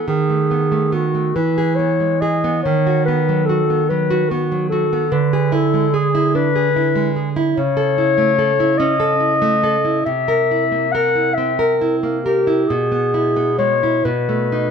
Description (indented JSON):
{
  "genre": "romantic duo for clarinet and classical guitar",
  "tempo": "41-50 BPM (dotted quarters)",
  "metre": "6/8",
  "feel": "rubato",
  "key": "E major",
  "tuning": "A4 = 435 Hz",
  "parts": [
    { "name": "mellow clarinet", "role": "melody", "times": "0.0-14.7 s", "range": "F#4 to F#5", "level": "-18 LUFS", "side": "left 4 dB", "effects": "none" },
    { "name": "nylon-string guitar", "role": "accompaniment", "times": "0.0-14.7 s", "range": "B2 to Bb4", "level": "-18 LUFS", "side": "right 3 dB", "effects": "none" }
  ],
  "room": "light reverb",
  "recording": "close, detailed microphones",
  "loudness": "-15 LUFS",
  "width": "side -6 dB against mid",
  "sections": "0.0-14.7 A section",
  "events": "none",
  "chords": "0.1 B7/D#; 1.4 E; 2.6 B/D#; 5.1 E7/D; 7.6 A/C#; 10.1 C7; 12.7 E/B; 14.1 B7",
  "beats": "| 0.08 1.35 | 2.65 3.89 | 5.12 6.36 | 7.58 8.79 | 10.07 11.38 | 12.70 14.07"
}